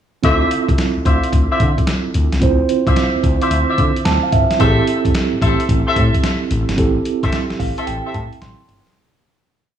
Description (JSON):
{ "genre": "R&B, new jack swing", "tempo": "110 BPM", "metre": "4/4", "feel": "swing 66% on 16ths", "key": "D minor", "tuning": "A4 = 441 Hz", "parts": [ { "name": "mellow tine electric piano", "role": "accompaniment", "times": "0.2-9.0 s", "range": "C4 to C6", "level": "-19 LUFS", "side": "right 5 dB", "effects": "medium stereo tremolo" }, { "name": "warm horn section", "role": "stabs", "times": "0.2-8.2 s", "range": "F4 to E5", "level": "-21 LUFS", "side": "left 2 dB", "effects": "analog delay" }, { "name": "smooth gliding synth bass", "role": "bass", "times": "0.2-8.8 s", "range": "G1 to D3", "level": "-19 LUFS", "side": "left 1 dB", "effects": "none" }, { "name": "boom bap sampler-style drum kit", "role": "drums", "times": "0.2-9.0 s", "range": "hi-hat, kick drum, snare drum", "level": "-18 LUFS", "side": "left 1 dB", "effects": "none" } ], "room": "moderate plate reverb, RT60 1.4 s", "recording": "dreamy mix soaked in reverb, small room reverb", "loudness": "-14 LUFS", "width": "side -9 dB against mid", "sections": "0.2-9.0 verse", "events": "tine electric piano fill 3.8-4.6, 7.3-9.0; fade-out 6.8-9.0", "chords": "0.2 Dm9; 4.6 Am7" }